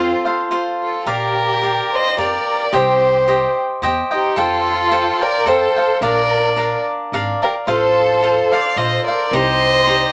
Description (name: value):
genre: mexican folk, mariachi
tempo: 109 BPM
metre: 3/4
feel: swing 54% on 8ths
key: Bb major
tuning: A4 = 440 Hz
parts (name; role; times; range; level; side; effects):
- dark violin; melody; 0.0-10.1 s; F4 to F5; -20 LUFS; equal; none
- rich studio violin section; second line; 0.0-10.1 s; C4 to D5; -23 LUFS; equal; none
- cavaquinho; accompaniment; 0.0-10.1 s; D4 to G5; -22 LUFS; equal; none
- upright bass; bass; 0.0-10.0 s; Ab1 to F2; -30 LUFS; equal; none
room: wet studio reverb, RT60 0.5 s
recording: none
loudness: -17 LUFS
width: mono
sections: 0.0-1.1 A section; 1.1-10.1 B section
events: none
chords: 0.0 F; 1.1 Bb6; 2.7 Cm; 4.4 Fadd9; 6.0 Bb; 7.7 F/A; 9.3 Cmadd9